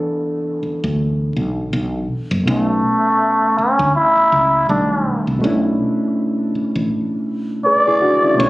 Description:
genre	R&B, neo-soul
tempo	81 BPM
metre	4/4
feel	swing 57% on 16ths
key	B minor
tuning	A4 = 440 Hz
part	bright reed electric piano	accompaniment	0.0-8.5 s	B2 to B4	-19 LUFS	equal	overdrive
part	woody fretless electric bass	bass	0.6-8.5 s	F#1 to D2	-20 LUFS	equal	none
part	trumpet with cup mute	melody	2.5-8.5 s	A3 to D5	-15 LUFS	equal	none
room	light reverb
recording	recorded on a phone in the room, studio reverb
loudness	-15 LUFS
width	side -19 dB against mid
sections	0.0-8.4 A section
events	none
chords	0.0 E7sus4; 2.5 B7sus2; 4.7 B7alt; 5.4 Bm11

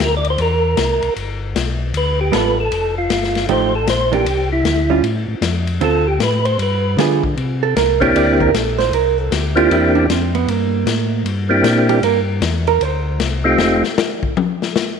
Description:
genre	soul jazz organ trio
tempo	155 BPM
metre	4/4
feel	swing 64% on 8ths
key	C mixolydian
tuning	A4 = 439 Hz
part	percussive tonewheel organ	melody	0.0-13.8 s	A3 to D5	-17 LUFS	equal	overdrive, chorus vibrato, fast rotary speaker
part	mellow tonewheel organ	bass	0.0-13.8 s	F1 to D3	-20 LUFS	left 1 dB	slow rotary speaker
part	vintage drum kit	drums	0.0-14.9 s	hi-hat, kick drum, ride cymbal, snare drum, toms	-22 LUFS	left 8 dB	none
part	hollow-body jazz guitar	accompaniment	2.3-13.2 s	D3 to D5	-18 LUFS	right 12 dB	none
room	moderate echo chamber reverb, RT60 1.7 s, studio reverb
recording	1960s-style stereo with parts hard left and right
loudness	-14 LUFS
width	side -6 dB against mid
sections	0.0-7.4 A section; 7.4-15.0 A section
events	tonewheel organ solo 0.0-7.4; hollow-body jazz guitar solo 7.4-15.0; drum solo 13.6-15.0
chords	0.0 C9; 1.2 G9; 2.7 F9; 4.3 Cadd9; 5.0 F; 5.8 Dm7; 6.6 G7b9; 7.4 C9; 13.6 F9

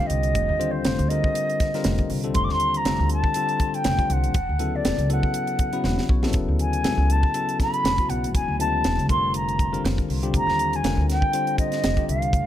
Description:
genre	electric jazz fusion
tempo	120 BPM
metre	4/4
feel	swing 55% on 16ths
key	unclear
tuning	A4 = 441 Hz
part	mellow concert flute	melody	0.0-12.5 s	C5 to D6	-25 LUFS	equal	none
part	bell-like tine electric piano	accompaniment	0.0-12.5 s	C#3 to F#5	-28 LUFS	left 5 dB	none
part	upright bass	bass	0.1-12.5 s	E1 to Eb2	-24 LUFS	equal	none
part	tight funk drum kit	drums	0.1-12.5 s	hi-hat, kick drum, snare drum	-26 LUFS	right 1 dB	none
room	light reverb, small room reverb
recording	none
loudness	-20 LUFS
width	side -11 dB against mid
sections	0.0-12.5 A section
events	tine electric piano fill 5.6-6.4; drum fill 5.9-6.4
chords	0.0 F13sus4; 4.4 E13sus4; 9.1 Fsus4

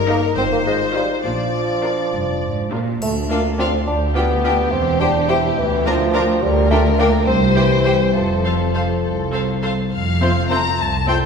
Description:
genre	cinematic, playful, whimsical film cue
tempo	69 BPM (dotted quarters)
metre	6/8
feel	straight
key	F major from 3.0 s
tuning	A4 = 439 Hz
part	rich chamber violin section	melody	0.0-11.2 s	G4 to Bb5	-24 LUFS	left 5 dB	none
part	mellow French horn section	sustained chords	0.0-9.6 s	D4 to C5	-26 LUFS	left 2 dB	none
part	rich chamber double bass section	bass	0.0-11.3 s	E1 to D2	-23 LUFS	right 1 dB	none
part	rich studio cello section	bass	0.0-11.3 s	C2 to Bb2	-22 LUFS	equal	none
part	rich chamber violin section	second line	0.1-11.2 s	G4 to Bb5	-26 LUFS	left 4 dB	none
part	mellow bassoon	accompaniment	0.1-11.2 s	E3 to E4	-21 LUFS	right 1 dB	none
part	rich chamber viola section	accompaniment	0.1-11.2 s	C4 to C5	-27 LUFS	right 1 dB	none
part	triangle	percussion	3.0-4.1 s	none	-35 LUFS	left 1 dB	none
part	silver concert flute	second line	10.2-11.1 s	C6	-29 LUFS	left 3 dB	none
part	warm clarinet	second line	10.2-11.2 s	F4	-28 LUFS	right 2 dB	none
part	warm oboe	second line	10.2-11.2 s	C5	-26 LUFS	equal	none
room	wet scoring stage reverb, RT60 1.9 s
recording	heard from further back in the room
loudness	-15 LUFS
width	side -6 dB against mid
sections	0.0-9.9 A section; 9.9-11.3 B section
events	none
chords	0.4 Fm7/Ab; 1.3 Bb; 3.0 Dm; 3.9 G7/D; 4.7 C/E; 5.6 Bb/D; 6.4 Gm7/D; 7.3 C; 8.1 F

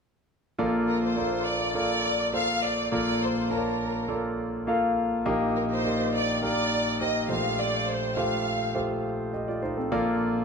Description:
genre	pop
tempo	103 BPM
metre	4/4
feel	straight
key	Bb major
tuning	A4 = 439 Hz
part	clear concert grand piano	accompaniment	0.6-10.4 s	Bb1 to A5	-26 LUFS	equal	none
part	warm studio violin section	melody	0.9-8.8 s	Bb4 to F5	-28 LUFS	equal	plate reverb
room	wet large studio reverb, RT60 0.9 s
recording	dark, warm production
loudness	-24 LUFS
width	side -5 dB against mid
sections	0.6-10.4 A section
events	none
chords	0.6 Bbmaj7; 5.3 Eb/Bb; 7.3 Fadd9/Bb; 9.9 Bbmaj7

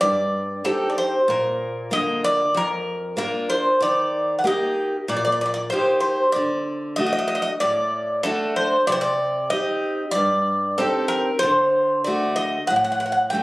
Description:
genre	greek folk, Greek bouzouki band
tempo	95 BPM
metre	4/4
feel	straight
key	D phrygian dominant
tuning	A4 = 441 Hz
part	Greek bouzouki	melody	0.0-13.4 s	A4 to G5	-20 LUFS	equal	plate reverb
part	picked steel-string acoustic guitar	accompaniment	0.0-13.4 s	F2 to G4	-25 LUFS	equal	none
room	wet studio reverb, RT60 0.7 s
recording	recorded on a phone in the room, club reverb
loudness	-19 LUFS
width	side -20 dB against mid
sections	0.0-13.4 A section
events	none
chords	0.0 Cm; 1.3 Bb; 3.8 Eb; 6.3 D; 8.9 Cm; 11.4 D

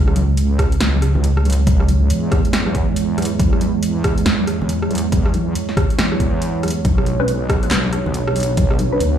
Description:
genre	deep dubstep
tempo	139 BPM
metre	4/4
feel	swing 62% on 16ths, half-time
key	C# phrygian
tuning	A4 = 442 Hz
part	deep dark ambient pad	sustained chords	0.0-9.2 s	G#3 to C#5	-22 LUFS	right 2 dB	chorus, built-in reverb
part	wobble bass	bass	0.0-9.2 s	B1 to E2	-18 LUFS	equal	chorus
part	deep house drum kit	drums	0.1-9.1 s	handclaps, hi-hat, rim click, snare drum	-23 LUFS	right 1 dB	overdrive
part	congas	percussion	0.2-8.9 s	none	-25 LUFS	equal	dub echo
part	electronic kick drum	drums	0.6-8.7 s	none	-18 LUFS	equal	overdrive
part	filtered dub chord stab	stabs	7.2-9.0 s	C#4 to B4	-23 LUFS	left 1 dB	phaser, wide subtle chorus, cassette tape, dub echo
room	light reverb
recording	played on a big sound system in a bare room, large studio reverb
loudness	-15 LUFS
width	side -9 dB against mid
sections	0.0-9.2 A section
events	none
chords	0.0 C#m; 3.4 E6; 6.8 Bmadd9

